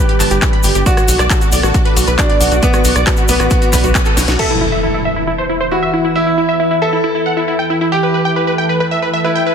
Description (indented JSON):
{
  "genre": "uplifting trance",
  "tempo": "136 BPM",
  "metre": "4/4",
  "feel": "straight",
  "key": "E minor",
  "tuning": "A4 = 440 Hz",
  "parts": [
    { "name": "supersaw stab", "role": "melody", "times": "0.0-9.5 s", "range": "E4 to B5", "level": "-17 LUFS", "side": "right 1 dB", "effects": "sidechain pumping, low-pass filter, ping-pong delay" },
    { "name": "bright concert grand piano", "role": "second line", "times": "0.0-9.5 s", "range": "B3 to B4", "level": "-18 LUFS", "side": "equal", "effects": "tape echo" },
    { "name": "analog string pad", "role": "sustained chords", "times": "0.0-9.5 s", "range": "E3 to D5", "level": "-20 LUFS", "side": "equal", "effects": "ensemble chorus, sidechain pumping" },
    { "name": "techno drum kit", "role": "drums", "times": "0.1-4.5 s", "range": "crash cymbal, handclaps, hi-hat, rim click, snare drum", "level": "-19 LUFS", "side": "left 1 dB", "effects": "soft clipping on snare, sidechain pumping on hats, sidechain pumping on cymbals" },
    { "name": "tight sequencer bass", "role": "bass", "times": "0.2-4.4 s", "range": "G1 to B1", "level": "-16 LUFS", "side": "equal", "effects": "sidechain pumping" },
    { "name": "egg shaker", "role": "percussion", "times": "0.2-4.4 s", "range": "none", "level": "-23 LUFS", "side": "left 4 dB", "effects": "none" },
    { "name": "electronic kick drum", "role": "drums", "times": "0.4-4.0 s", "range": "none", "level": "-14 LUFS", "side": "equal", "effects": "none" },
    { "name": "impact", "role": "sound effects", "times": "4.4-6.2 s", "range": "none", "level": "-22 LUFS", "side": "equal", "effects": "none" }
  ],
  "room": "moderate lush hall reverb, RT60 1.8 s",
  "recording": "dense, heavily limited modern master",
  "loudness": "-11 LUFS",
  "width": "side -7 dB against mid",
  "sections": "0.0-4.4 A section; 4.4-9.5 B section",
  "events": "band accent 4.0; drum fill 4.2; impact 4.4-6.2; filter sweep on supersaw synth 4.4-9.5",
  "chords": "0.0 G; 0.9 Bm7; 4.4 Em",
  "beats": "0.42 | 0.86 1.30 1.74 2.19 | 2.63 3.07 3.51 3.95 | 4.39 4.83 5.27 5.71 | 6.16 6.60 7.04 7.48 | 7.92 8.36 8.80 9.24"
}